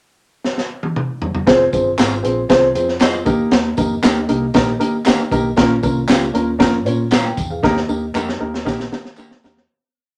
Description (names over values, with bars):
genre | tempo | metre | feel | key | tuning
uptempo 1960s-style soul | 117 BPM | 4/4 | straight | unclear | A4 = 439 Hz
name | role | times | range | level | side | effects
crunchy breakbeat drum kit | drums | 0.4-9.7 s | hi-hat, kick drum, snare drum, toms | -20 LUFS | equal | none
dark upright piano | accompaniment | 1.5-9.6 s | Bb3 to Bb5 | -19 LUFS | equal | none
vintage muted fingered electric bass | bass | 1.5-9.7 s | F1 to Eb3 | -29 LUFS | equal | none
tambourine and handclaps | percussion | 1.7-9.6 s | none | -32 LUFS | equal | none
electric guitar through a small old amp | stabs | 2.0-9.3 s | Bb3 to C5 | -26 LUFS | equal | none
room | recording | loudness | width
wet small room reverb, RT60 0.5 s | none | -17 LUFS | mono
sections
0.0-1.5 pickup bar; 1.5-9.7 verse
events
drum fill 0.4-1.5, 7.6-9.7; fade-out 7.6-9.7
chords
0.0 N.C.; 1.5 Fm; 3.3 Eb; 5.6 Bbm; 7.6 Eb